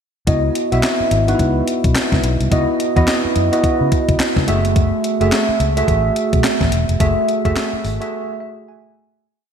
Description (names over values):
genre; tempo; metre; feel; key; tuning
R&B, new jack swing; 107 BPM; 4/4; swing 60% on 16ths; C# minor; A4 = 439 Hz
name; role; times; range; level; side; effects
tine electric piano; accompaniment; 0.3-9.3 s; A3 to G#5; -17 LUFS; right 1 dB; analog chorus
vintage muted fingered electric bass; bass; 0.3-8.0 s; E1 to C#3; -19 LUFS; left 1 dB; none
clean 12-bit digital drum machine; drums; 0.3-8.1 s; handclaps, hi-hat, kick drum, snare drum; -19 LUFS; left 1 dB; gated reverb
room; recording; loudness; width
moderate lush hall reverb, RT60 2.1 s; bright 1980s-style digital production; -14 LUFS; side -7 dB against mid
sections
0.3-9.2 verse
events
fade-out 7.0-9.2; break 8.1-9.2; tine electric piano fill 8.1-9.2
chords
0.3 C#m11; 4.5 F#m9